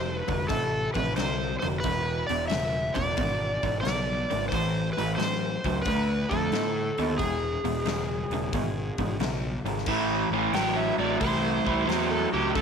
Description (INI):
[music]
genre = blues rock power trio and southern rock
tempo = 90 BPM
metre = 4/4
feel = swing 68% on 8ths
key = A minor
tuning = A4 = 435 Hz
[part]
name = overdriven slide guitar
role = melody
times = 0.0-12.6 s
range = G4 to G5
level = -30 LUFS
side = equal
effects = slapback echo
[part]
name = raw garage guitar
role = riff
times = 0.0-12.6 s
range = E2 to B3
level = -28 LUFS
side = right 1 dB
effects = overdrive
[part]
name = fuzz picked electric bass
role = bass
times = 0.0-12.6 s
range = E1 to A2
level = -32 LUFS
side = equal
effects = overdrive
[part]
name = huge arena drum kit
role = drums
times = 0.3-12.6 s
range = crash cymbal, hi-hat, kick drum, snare drum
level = -36 LUFS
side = left 3 dB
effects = none
[sound]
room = light reverb, small room ambience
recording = 1960s-style stereo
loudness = -24 LUFS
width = side -6 dB against mid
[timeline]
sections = 0.0-9.9 A section; 9.9-12.6 B section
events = electric slide guitar solo 9.9-12.6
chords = 0.0 F; 1.8 E7; 4.5 Am; 5.9 Dm; 7.2 E; 9.9 Am